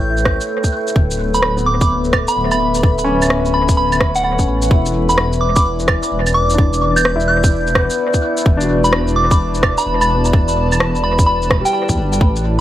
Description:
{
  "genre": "future garage",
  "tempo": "128 BPM",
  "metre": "4/4",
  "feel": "swing 64% on 16ths",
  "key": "E dorian",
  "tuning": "A4 = 440 Hz",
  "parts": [
    { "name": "soft synth bell", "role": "melody", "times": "0.0-11.8 s", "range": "F#5 to G6", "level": "-19 LUFS", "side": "right 1 dB", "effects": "chorus, tape echo" },
    { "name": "warm upright piano", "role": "accompaniment", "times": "0.0-12.2 s", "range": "G3 to B4", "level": "-24 LUFS", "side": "left 3 dB", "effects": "sidechain pumping, tape echo" },
    { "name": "dark analog pad", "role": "sustained chords", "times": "0.0-12.6 s", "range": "A3 to A5", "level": "-21 LUFS", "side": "left 1 dB", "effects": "chorus, phaser, sidechain pumping" },
    { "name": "dark detuned saw bass", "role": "bass", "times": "0.0-12.6 s", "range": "D1 to E2", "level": "-19 LUFS", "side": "equal", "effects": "sidechain pumping" },
    { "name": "electronic shaker, rim click and claves", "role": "drums", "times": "0.2-12.4 s", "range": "none", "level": "-20 LUFS", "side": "right 1 dB", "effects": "overdrive, analog delay" },
    { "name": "electronic kick drum", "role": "drums", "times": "0.3-12.3 s", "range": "none", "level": "-14 LUFS", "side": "equal", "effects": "overdrive" }
  ],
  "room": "light reverb, digital ambience",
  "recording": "echo-heavy mix, vinyl crackle",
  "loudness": "-13 LUFS",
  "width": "side -13 dB against mid",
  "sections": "0.0-4.7 A section; 4.7-12.6 B section",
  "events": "none",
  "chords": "0.0 A9; 1.0 Dsus2; 4.7 Em9"
}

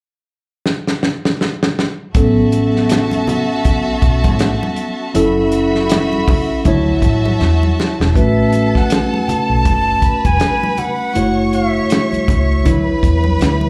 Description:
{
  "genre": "lush 1970s-style soul",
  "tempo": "80 BPM",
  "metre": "4/4",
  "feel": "swing 58% on 16ths",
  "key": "A major",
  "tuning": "A4 = 437 Hz",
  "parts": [
    { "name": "warm soul drum kit", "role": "drums", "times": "0.7-13.6 s", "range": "hi-hat, kick drum, snare drum", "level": "-19 LUFS", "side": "equal", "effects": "none" },
    { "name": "rich studio violin section", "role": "second line", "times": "2.1-13.7 s", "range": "F#4 to C#6", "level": "-25 LUFS", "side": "equal", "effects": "slapback echo" },
    { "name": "tine electric piano", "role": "accompaniment", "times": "2.1-13.7 s", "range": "E3 to C#5", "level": "-19 LUFS", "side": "equal", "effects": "none" },
    { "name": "vintage muted fingered electric bass", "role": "bass", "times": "2.1-13.7 s", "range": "E1 to A2", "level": "-20 LUFS", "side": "equal", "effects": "none" },
    { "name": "congas", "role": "percussion", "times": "2.1-13.7 s", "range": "none", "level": "-28 LUFS", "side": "equal", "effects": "slapback echo" },
    { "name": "concert flute", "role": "melody", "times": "8.2-13.7 s", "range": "E5 to A5", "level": "-22 LUFS", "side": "equal", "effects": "slapback echo, tape echo" }
  ],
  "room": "light reverb",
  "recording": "live gig heard through the venue's PA, club reverb",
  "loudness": "-15 LUFS",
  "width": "mono",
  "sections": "0.0-2.1 A section; 2.1-8.2 B section; 8.2-13.7 C section",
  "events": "drum fill 0.6-2.1, 7.4-8.2",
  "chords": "0.0 N.C.; 2.1 A69; 5.1 F#m7; 6.7 Dmaj9; 8.2 A69; 11.2 F#m7; 12.7 Dmaj9"
}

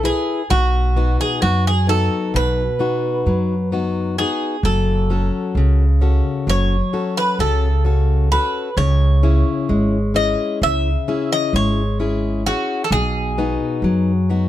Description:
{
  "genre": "greek folk",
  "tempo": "131 BPM (eighths)",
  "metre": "9/8",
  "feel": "straight",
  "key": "unclear",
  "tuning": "A4 = 439 Hz",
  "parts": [
    { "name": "fingerpicked plugged-in steel-string acoustic guitar", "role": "accompaniment", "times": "0.0-14.5 s", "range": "B2 to B4", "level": "-21 LUFS", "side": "left 4 dB", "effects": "none" },
    { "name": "upright bass", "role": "bass", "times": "0.0-14.5 s", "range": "F#1 to F#2", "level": "-18 LUFS", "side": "right 1 dB", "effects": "none" },
    { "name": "Greek bouzouki", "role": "melody", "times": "0.1-14.5 s", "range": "F#4 to E5", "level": "-22 LUFS", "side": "right 1 dB", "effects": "none" }
  ],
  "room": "light reverb",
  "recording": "close, detailed microphones",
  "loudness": "-16 LUFS",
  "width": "side -13 dB against mid",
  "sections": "0.0-14.5 A section",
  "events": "none",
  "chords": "0.0 E; 0.5 B; 4.6 F#m; 8.8 C#m; 12.9 B"
}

